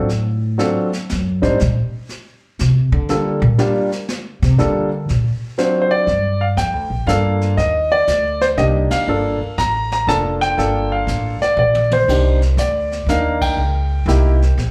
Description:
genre	jazz piano trio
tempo	120 BPM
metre	3/4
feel	swing 67% on 8ths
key	G minor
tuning	A4 = 440 Hz
part	warm concert grand piano	melody	0.0-14.7 s	F#3 to Bb5	-20 LUFS	equal	plate reverb, slapback echo
part	upright bass	bass	0.0-14.7 s	F1 to D3	-20 LUFS	equal	none
part	jazz brush drum kit	drums	0.1-14.7 s	brushed snare drum, crash cymbal, hi-hat, kick drum, ride cymbal, snare drum, toms	-31 LUFS	equal	none
room	light reverb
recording	live gig heard through the venue's PA, club reverb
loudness	-17 LUFS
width	mono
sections	0.0-6.1 A section; 6.1-14.7 B section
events	upright bass solo 0.0-6.1; band accent 8.8, 13.3; drum fill 11.6-12.1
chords	0.1 D7#9; 1.6 Csus2; 5.6 D7#9; 6.1 Gm9; 7.6 Cm9; 9.1 Gm9; 12.1 Cm9; 13.6 C#dim7

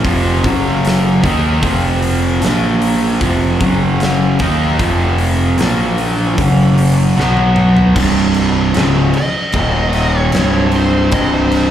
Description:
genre	stoner and doom metal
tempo	76 BPM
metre	4/4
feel	straight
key	unclear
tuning	A4 = 437 Hz
part	fuzz guitar	riff	0.0-11.7 s	C2 to Eb4	-14 LUFS	equal	distortion, slapback echo
part	big rock drum kit	drums	0.0-11.7 s	crash cymbal, hi-hat, kick drum, snare drum, toms	-20 LUFS	equal	none
part	fuzz picked electric bass	bass	0.1-11.7 s	C1 to Eb2	-16 LUFS	equal	overdrive
part	fuzz lead guitar	melody	9.2-11.7 s	C5 to Eb5	-19 LUFS	right 1 dB	distortion
room	studio reverb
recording	live gig heard through the venue's PA, club reverb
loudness	-11 LUFS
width	side -10 dB against mid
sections	0.0-8.0 A section; 8.0-11.7 B section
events	drum fill 7.2-8.0; lead electric guitar solo 8.0-11.7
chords	0.1 F5; 0.4 F#5; 1.2 F5; 2.4 Bb5; 3.2 F5; 3.6 F#5; 4.4 F5; 5.6 Bb5; 6.4 F#5; 7.2 B5; 8.0 C5; 9.5 Eb5; 10.3 C5

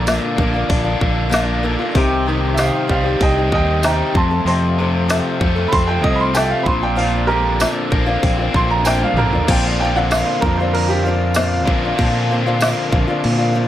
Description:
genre	folk rock and heartland rock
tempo	96 BPM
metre	4/4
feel	straight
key	unclear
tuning	A4 = 441 Hz
part	bright upright piano	second line	0.0-11.7 s	F4 to C6	-20 LUFS	right 3 dB	none
part	picked acoustic archtop guitar	accompaniment	0.0-13.7 s	F2 to A4	-22 LUFS	left 4 dB	none
part	mellow tonewheel organ	sustained chords	0.0-13.7 s	D3 to F5	-28 LUFS	right 1 dB	none
part	biting overdriven guitar	riff	0.0-13.7 s	F2 to F4	-22 LUFS	equal	none
part	fingered electric bass	bass	0.0-13.7 s	Bb1 to Bb2	-20 LUFS	equal	none
part	organic electronic drum kit	drums	0.1-13.4 s	crash cymbal, hi-hat, kick drum, snare drum, toms	-20 LUFS	equal	none
part	tambourine	percussion	0.1-12.8 s	none	-29 LUFS	right 4 dB	none
room	light reverb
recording	none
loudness	-14 LUFS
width	side -12 dB against mid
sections	0.0-9.5 A section; 9.5-13.7 B section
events	upright piano solo 0.0-9.5; drum fill 8.9-9.5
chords	0.0 Bb; 2.0 Cm; 4.2 F; 6.7 Bbadd9

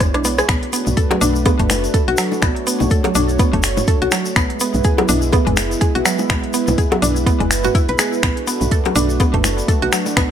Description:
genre	afro house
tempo	124 BPM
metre	4/4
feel	swing 57% on 16ths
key	B dorian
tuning	A4 = 441 Hz
part	warm analog pad	sustained chords	0.0-10.3 s	G#3 to C#5	-22 LUFS	right 2 dB	chorus, sidechain pumping
part	woody FM bass	bass	0.0-10.3 s	F#1 to B1	-22 LUFS	equal	sidechain pumping
part	deep house drum kit	drums	0.0-10.3 s	finger snaps, hi-hat, rim click, toms	-22 LUFS	equal	none
part	electronic kick drum	drums	0.0-10.3 s	none	-17 LUFS	equal	none
part	tube shaker	percussion	0.0-10.3 s	none	-26 LUFS	left 4 dB	none
part	mallet-like synth pluck	arpeggios	0.1-10.3 s	F#3 to B4	-20 LUFS	right 1 dB	chorus, sidechain pumping, tape echo
part	bongos	percussion	0.2-10.3 s	none	-24 LUFS	left 7 dB	none
room	little or no reverb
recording	none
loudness	-14 LUFS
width	side -9 dB against mid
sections	0.0-10.3 A section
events	drum fill 0.0-0.5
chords	0.5 Bm7; 4.4 E; 8.2 Bm7

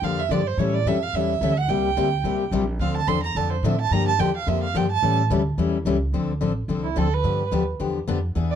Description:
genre	acoustic string swing (jazz manouche)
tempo	216 BPM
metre	4/4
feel	swing 56% on 8ths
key	D minor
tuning	A4 = 440 Hz
part	warm violin	second line	0.0-8.6 s	E4 to C6	-25 LUFS	right 10 dB	none
part	picked steel-string acoustic guitar	accompaniment	0.0-8.5 s	C3 to A4	-24 LUFS	left 5 dB	none
part	upright bass	bass	0.0-8.6 s	A1 to A2	-25 LUFS	right 1 dB	none
room	light reverb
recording	dark, warm production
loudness	-20 LUFS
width	side -9 dB against mid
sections	0.0-6.1 A section; 6.1-8.6 A section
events	violin solo 0.0-6.1, 6.1-8.6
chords	0.0 Gm7; 0.6 A7; 1.7 C7; 2.8 Dm7; 3.9 Gm7; 5.0 A7; 6.1 Dm7; 7.2 G7

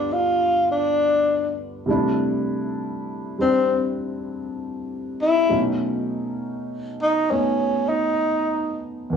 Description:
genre	jazz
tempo	66 BPM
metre	4/4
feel	swing 67% on 8ths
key	unclear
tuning	A4 = 440 Hz
part	breathy tenor saxophone	melody	0.0-8.8 s	C4 to F4	-20 LUFS	left 1 dB	none
part	warm concert grand piano	accompaniment	0.0-9.2 s	E2 to F4	-25 LUFS	right 1 dB	none
room	moderate echo chamber reverb, RT60 1.8 s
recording	worn, warbling old tape, cassette tape, warbly pitch drift, small room ambience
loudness	-20 LUFS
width	side -7 dB against mid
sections	0.0-9.1 A section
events	none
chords	0.0 G9; 1.9 C69; 5.5 B7

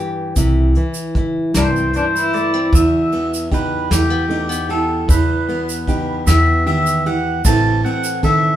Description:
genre	acoustic folk duo or small band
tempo	51 BPM (dotted quarters)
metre	6/8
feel	straight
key	E harmonic minor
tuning	A4 = 439 Hz
part	nylon-string guitar	accompaniment	0.0-8.6 s	E2 to A4	-21 LUFS	left 1 dB	none
part	upright bass	bass	0.4-7.8 s	A1 to E2	-18 LUFS	equal	none
part	soft brush drum kit	drums	0.4-8.4 s	hi-hat, kick drum, ride cymbal, snare drum	-21 LUFS	equal	none
part	tube shaker	percussion	0.4-8.3 s	none	-27 LUFS	right 5 dB	none
part	warm cello	melody	1.5-2.7 s	C4 to E4	-22 LUFS	left 2 dB	none
part	pedal steel guitar	second line	1.6-8.6 s	G4 to A5	-20 LUFS	equal	none
part	dark upright piano	arpeggios	2.7-8.6 s	D#3 to E4	-21 LUFS	right 4 dB	none
room	wet studio reverb, RT60 0.6 s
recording	band playing live in one room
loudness	-14 LUFS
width	side -12 dB against mid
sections	0.0-2.7 A section; 2.7-8.6 B section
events	cello solo 0.0-2.7; pedal steel guitar solo 2.7-8.6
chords	0.4 C; 2.7 Em; 7.5 Am

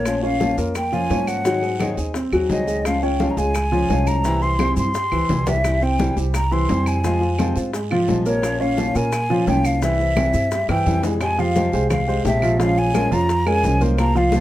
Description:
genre	latin, Cuban son and guajira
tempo	172 BPM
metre	4/4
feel	straight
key	unclear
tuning	A4 = 441 Hz
part	breathy mellow silver concert flute	melody	0.0-14.4 s	Db5 to C6	-23 LUFS	equal	none
part	nylon-string guitar	accompaniment	0.0-14.4 s	C3 to Ab4	-26 LUFS	left 3 dB	none
part	warm baby grand piano	arpeggios	0.0-14.4 s	E3 to F5	-22 LUFS	right 1 dB	none
part	upright bass	bass	0.0-14.4 s	Bb1 to Bb2	-23 LUFS	right 1 dB	none
part	bongos	percussion	0.1-14.4 s	none	-31 LUFS	left 5 dB	none
part	claves	percussion	0.1-14.2 s	none	-34 LUFS	right 2 dB	none
part	congas	percussion	0.1-14.4 s	none	-28 LUFS	equal	none
part	guiro	percussion	0.1-14.4 s	none	-40 LUFS	right 6 dB	none
part	maracas	percussion	0.1-14.4 s	none	-40 LUFS	left 5 dB	none
room	light reverb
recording	none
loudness	-17 LUFS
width	side -14 dB against mid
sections	0.1-11.2 A section; 11.2-14.4 B section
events	drum fill 4.8-5.6, 10.7-11.2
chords	0.1 Bbm; 1.5 Ab7; 2.9 Db; 4.2 C; 7.0 Fm; 8.4 Bbm; 9.8 C; 11.2 Fmadd9; 12.6 Bbm7

